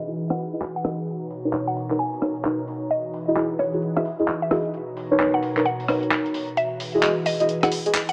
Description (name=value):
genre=UK garage, two-step garage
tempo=131 BPM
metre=4/4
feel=swing 63% on 16ths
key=E lydian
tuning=A4 = 440 Hz
part: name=mallet-like synth pluck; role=melody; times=0.0-8.1 s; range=C#5 to G#5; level=-30 LUFS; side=equal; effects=chorus, delay
part: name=airy breathy pad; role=sustained chords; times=0.0-8.1 s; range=B2 to A#5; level=-32 LUFS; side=equal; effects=chorus
part: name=deep mellow chord stab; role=stabs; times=0.1-8.0 s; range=D#4 to D#5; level=-26 LUFS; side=equal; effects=chorus
part: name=breakbeat sampler-style drum kit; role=drums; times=0.1-8.1 s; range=handclaps, hi-hat, rim click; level=-29 LUFS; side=equal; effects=small room ambience
room=moderate lush hall reverb, RT60 1.7 s, digital ambience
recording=low-pass filter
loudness=-24 LUFS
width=mono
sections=0.0-8.1 A section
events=filter sweep on synth stab 0.0-8.1; filter sweep 0.0-8.1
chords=0.0 Emaj9; 1.1 Bmaj9; 2.9 Emaj9; 4.7 Bmaj9; 6.6 Emaj9